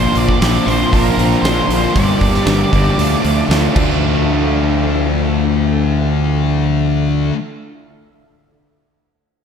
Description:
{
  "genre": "rock, shoegaze and dream pop",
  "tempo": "116 BPM",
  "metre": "4/4",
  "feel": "straight",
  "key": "D minor",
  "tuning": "A4 = 440 Hz",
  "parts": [
    { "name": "octave-fuzz lead guitar", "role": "melody", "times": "0.0-3.5 s", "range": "Bb4 to D5", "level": "-22 LUFS", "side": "right 2 dB", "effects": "distortion, diffuse ambient delay" },
    { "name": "string machine, cellos", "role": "sustained chords", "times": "0.0-7.3 s", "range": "D4 to D6", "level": "-25 LUFS", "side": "equal", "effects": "ensemble chorus" },
    { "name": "electric guitar through a small old amp", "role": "arpeggios", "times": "0.0-7.3 s", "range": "F3 to C4", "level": "-27 LUFS", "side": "left 2 dB", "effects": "none" },
    { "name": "biting overdriven guitar", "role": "riff", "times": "0.0-7.4 s", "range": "G2 to D4", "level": "-23 LUFS", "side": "right 1 dB", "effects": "none" },
    { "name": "overdriven semi-hollow guitar", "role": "riff", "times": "0.0-7.4 s", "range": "G2 to G4", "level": "-21 LUFS", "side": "right 7 dB", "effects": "reverse reverb" },
    { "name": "thick fuzz guitar", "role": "riff", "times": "0.0-7.4 s", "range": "G2 to D4", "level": "-19 LUFS", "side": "left 10 dB", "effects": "distortion, wide subtle chorus" },
    { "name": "fuzz fingered electric bass", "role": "bass", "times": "0.0-7.3 s", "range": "G1 to D2", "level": "-18 LUFS", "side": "equal", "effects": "overdrive" },
    { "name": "huge arena drum kit", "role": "drums", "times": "0.2-3.9 s", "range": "crash cymbal, hi-hat, kick drum, snare drum", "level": "-19 LUFS", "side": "right 1 dB", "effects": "none" }
  ],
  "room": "moderate plate reverb, RT60 1.7 s, studio ambience",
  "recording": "dreamy mix soaked in reverb",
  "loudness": "-12 LUFS",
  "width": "side -7 dB against mid",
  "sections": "0.0-4.0 A section; 4.0-8.1 B section",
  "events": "none",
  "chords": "0.0 Bbadd9; 2.0 Gm; 3.0 Dmadd9"
}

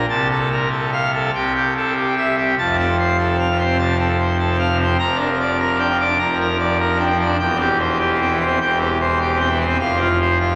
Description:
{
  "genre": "classical, organ toccata",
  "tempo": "100 BPM",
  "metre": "4/4",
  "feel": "straight",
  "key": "F major",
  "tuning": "A4 = 441 Hz",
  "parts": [
    { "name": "pipe organ, full organ", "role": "solo", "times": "0.0-10.6 s", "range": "E1 to Bb5", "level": "-18 LUFS", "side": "equal", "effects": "none" }
  ],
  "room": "wet cathedral reverb, RT60 5.0 s",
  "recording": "none",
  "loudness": "-18 LUFS",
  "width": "mono",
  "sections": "0.0-2.6 A section; 2.6-10.6 B section",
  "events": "none",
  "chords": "0.1 F/C; 1.3 C; 2.6 F; 5.0 Gm7/F; 7.4 C/E; 9.8 F5"
}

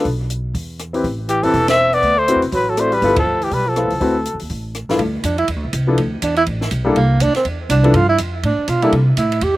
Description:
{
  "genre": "jazz, small-group swing and bop",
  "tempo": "243 BPM",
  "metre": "4/4",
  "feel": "swing 59% on 8ths",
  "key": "G mixolydian",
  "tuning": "A4 = 440 Hz",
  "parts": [
    { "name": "warm concert grand piano", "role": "accompaniment", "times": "0.0-8.9 s", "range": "G2 to D5", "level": "-19 LUFS", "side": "left 2 dB", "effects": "none" },
    { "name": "upright bass", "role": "bass", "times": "0.0-9.6 s", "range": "E1 to C3", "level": "-20 LUFS", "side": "equal", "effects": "none" },
    { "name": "compact cocktail drum kit", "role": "drums", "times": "0.0-9.5 s", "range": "hi-hat, kick drum, ride cymbal, rim click, snare drum", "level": "-27 LUFS", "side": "right 1 dB", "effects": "none" },
    { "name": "breathy trumpet", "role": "melody", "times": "1.3-4.4 s", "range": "G4 to E5", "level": "-17 LUFS", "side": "left 2 dB", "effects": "slapback echo" },
    { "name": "mellow tenor saxophone", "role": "second line", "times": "1.3-9.6 s", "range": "E3 to G4", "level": "-19 LUFS", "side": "right 3 dB", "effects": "slapback echo" }
  ],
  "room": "little or no reverb",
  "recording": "recorded outdoors, with no room sound",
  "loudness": "-14 LUFS",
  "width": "side -17 dB against mid",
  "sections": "0.0-5.0 A section; 5.0-9.6 B section",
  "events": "band accent 1.7, 3.1; tenor saxophone solo 5.0-9.6",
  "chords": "0.1 N.C.; 0.5 Em; 1.0 Am7; 2.0 D13; 3.0 G13; 4.0 D13; 5.0 G13 (rootless); 7.0 C9; 7.9 G9; 8.9 C6"
}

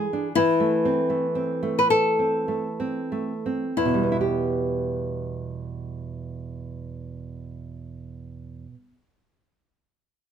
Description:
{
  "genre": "romantic duo for nylon-string guitar and classical guitar",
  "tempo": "30-45 BPM (dotted quarters)",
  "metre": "6/8",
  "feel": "rubato",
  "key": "E minor",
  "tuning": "A4 = 440 Hz",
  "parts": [
    { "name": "nylon-string guitar", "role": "melody", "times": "0.0-8.7 s", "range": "E4 to B4", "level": "-23 LUFS", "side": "left 3 dB", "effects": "none" },
    { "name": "nylon-string guitar", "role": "accompaniment", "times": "0.0-9.1 s", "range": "E2 to G#4", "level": "-26 LUFS", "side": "right 2 dB", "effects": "none" }
  ],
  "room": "little or no reverb",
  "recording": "close, detailed microphones",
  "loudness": "-22 LUFS",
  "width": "side -8 dB against mid",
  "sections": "0.0-3.8 A section; 3.8-7.5 B section",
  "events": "slowing down 0.0-3.8",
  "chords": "0.4 Am/E; 3.8 Em"
}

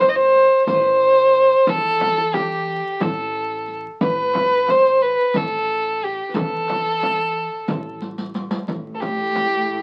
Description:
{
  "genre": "Turkish makam ensemble",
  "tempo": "180 BPM (eighths)",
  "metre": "7/8",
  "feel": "straight",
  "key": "A makam nikriz",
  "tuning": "A4 = 440 Hz",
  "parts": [
    { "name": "dark violin", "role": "melody", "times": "0.0-9.8 s", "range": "G4 to D#5", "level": "-19 LUFS", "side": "equal", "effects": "none" },
    { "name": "qanun", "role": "second line", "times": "0.0-8.0 s", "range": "G4 to C5", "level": "-34 LUFS", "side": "equal", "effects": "none" },
    { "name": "upright bass", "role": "bass", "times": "0.0-9.8 s", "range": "A1 to E2", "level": "-36 LUFS", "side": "equal", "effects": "none" },
    { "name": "darbuka", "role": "percussion", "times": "0.0-9.8 s", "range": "none", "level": "-36 LUFS", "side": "equal", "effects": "none" },
    { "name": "frame drum", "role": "percussion", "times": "0.0-9.5 s", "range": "none", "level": "-31 LUFS", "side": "equal", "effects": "none" },
    { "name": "riq", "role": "percussion", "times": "0.0-9.5 s", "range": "none", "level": "-32 LUFS", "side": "equal", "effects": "none" },
    { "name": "dark symphonic cello section", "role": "drone", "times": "8.7-9.8 s", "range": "A2", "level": "-32 LUFS", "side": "equal", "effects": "none" }
  ],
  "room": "light reverb",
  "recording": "very old 78 rpm record, vinyl crackle",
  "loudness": "-19 LUFS",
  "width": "mono",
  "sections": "0.0-8.7 A section; 8.7-9.8 B section",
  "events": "drum fill 8.0-8.7",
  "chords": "none"
}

